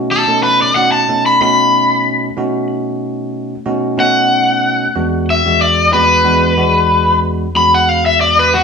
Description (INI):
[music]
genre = blues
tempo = 93 BPM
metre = 4/4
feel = swing 53% on 16ths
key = B mixolydian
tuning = A4 = 443 Hz
[part]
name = bell-like tine electric piano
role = accompaniment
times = 0.0-8.6 s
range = E2 to A4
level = -16 LUFS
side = right 1 dB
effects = none
[part]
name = crunchy overdriven guitar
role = melody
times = 0.1-8.6 s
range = F#4 to B5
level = -11 LUFS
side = left 1 dB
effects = spring reverb
[sound]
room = moderate studio ambience, RT60 0.5 s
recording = band playing live in one room, studio ambience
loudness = -10 LUFS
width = side -6 dB against mid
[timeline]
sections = 0.0-8.6 A section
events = none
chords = 0.0 B9; 5.0 E9